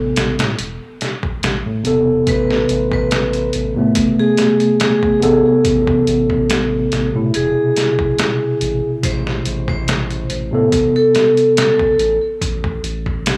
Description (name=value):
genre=trip hop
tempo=71 BPM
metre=4/4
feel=swing 53% on 16ths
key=A harmonic minor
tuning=A4 = 441 Hz
part: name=mellow tine electric piano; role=accompaniment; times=0.0-12.0 s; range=B2 to A4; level=-19 LUFS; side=equal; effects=harmonic tremolo, vintage 12-bit sampler grit, tape echo
part: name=round analog bass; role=bass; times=0.0-13.4 s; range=E1 to A2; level=-26 LUFS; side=equal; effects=tube saturation
part: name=trip hop sampler-style drum kit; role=drums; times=0.2-13.4 s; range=hi-hat, kick drum, snare drum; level=-23 LUFS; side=equal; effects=none
part: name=vibraphone with hard mallets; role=melody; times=2.3-12.2 s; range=G#4 to C5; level=-20 LUFS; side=equal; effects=tape echo
room=little or no reverb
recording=dry, gritty hardware recording, transformer saturation, small room reverb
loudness=-16 LUFS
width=mono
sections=0.0-13.4 A section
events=none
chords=0.0 Amadd9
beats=0.58 1.43 | 2.27 3.12 3.96 4.81 | 5.65 6.50 7.34 8.19 | 9.03 9.88 10.72 11.57 | 12.41 13.26